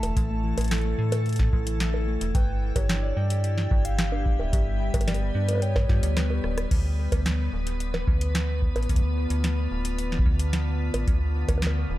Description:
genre	IDM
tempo	110 BPM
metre	4/4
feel	straight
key	unclear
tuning	A4 = 441 Hz
part	warbly nostalgic lead	melody	0.0-6.6 s	B4 to A5	-36 LUFS	left 1 dB	chorus, dub echo
part	icy glass pad	sustained chords	0.0-12.0 s	D3 to B4	-33 LUFS	left 1 dB	chorus, built-in reverb, vintage 12-bit sampler grit
part	harp-like synth pluck	arpeggios	0.0-6.6 s	E3 to G5	-35 LUFS	left 2 dB	chorus, dub echo
part	metallic FM bass	bass	0.0-12.0 s	D1 to A2	-26 LUFS	equal	none
part	electro analog drum machine	drums	0.0-11.7 s	bongos, crash cymbal, hi-hat, rim click, snare drum	-31 LUFS	right 1 dB	small room reverb
part	electronic kick drum	drums	0.2-11.6 s	none	-24 LUFS	equal	small room reverb
room	little or no reverb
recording	dark, warm production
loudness	-22 LUFS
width	side -16 dB against mid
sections	0.0-6.7 A section; 6.7-12.0 B section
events	drum fill 6.2-6.7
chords	0.0 Asus4; 2.3 G; 6.7 Dm6

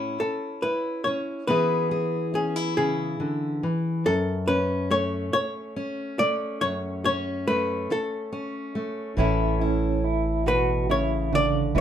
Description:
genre	acoustic folk duo or small band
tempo	47 BPM (dotted quarters)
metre	6/8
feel	straight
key	unclear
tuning	A4 = 441 Hz
part	fingerpicked steel-string acoustic guitar	accompaniment	0.0-11.8 s	F#2 to A4	-27 LUFS	left 1 dB	none
part	archtop guitar, miked and amplified	melody	0.2-11.8 s	G#4 to D5	-26 LUFS	left 1 dB	none
part	mellow electric guitar	arpeggios	9.2-11.8 s	C#3 to F#4	-27 LUFS	right 4 dB	tremolo
part	upright bass	bass	9.2-11.8 s	E1 to A1	-27 LUFS	right 1 dB	none
room	moderate studio reverb, RT60 0.7 s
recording	minimal, uncompressed stereo recording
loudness	-23 LUFS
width	side -9 dB against mid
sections	0.0-11.8 A section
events	none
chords	0.0 A; 1.5 E; 4.0 F#m; 9.2 Aadd9

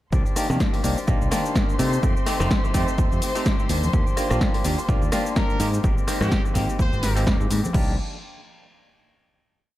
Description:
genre	filtered disco house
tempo	126 BPM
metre	4/4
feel	swing 57% on 16ths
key	C minor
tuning	A4 = 437 Hz
part	muted studio violin section	sustained chords	0.1-7.8 s	C5 to C6	-33 LUFS	left 1 dB	sidechain pumping
part	electric guitar with an envelope filter	riff	0.1-8.0 s	Eb3 to G4	-33 LUFS	left 2 dB	sidechain pumping
part	modern bright fingered electric bass	bass	0.1-8.0 s	F1 to C3	-24 LUFS	equal	sidechain pumping
part	electronic kick drum	drums	0.1-7.9 s	none	-23 LUFS	equal	studio reverb
part	house drum kit	drums	0.1-7.9 s	crash cymbal, hi-hat, rim click, shaker, snare drum	-29 LUFS	equal	sidechain pumping on perc, studio reverb, sidechain pumping on hats, sidechain pumping on cymbals, analog delay
part	maracas and congas	percussion	0.1-7.7 s	none	-34 LUFS	left 1 dB	none
part	overdriven clav	accompaniment	0.4-7.9 s	Eb3 to G4	-28 LUFS	equal	phaser, vintage 12-bit sampler grit, sidechain pumping, analog delay
part	clear trumpet section	melody	5.4-7.3 s	G4 to C5	-33 LUFS	left 1 dB	sidechain pumping, analog delay
room	digital ambience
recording	echo-heavy mix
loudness	-19 LUFS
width	side -15 dB against mid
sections	0.1-7.7 drop; 7.7-9.6 final chord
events	drop 0.1-7.7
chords	0.1 Cm9; 2.0 F9; 3.7 Ebmaj7; 5.6 Abmaj7; 7.7 Cm9

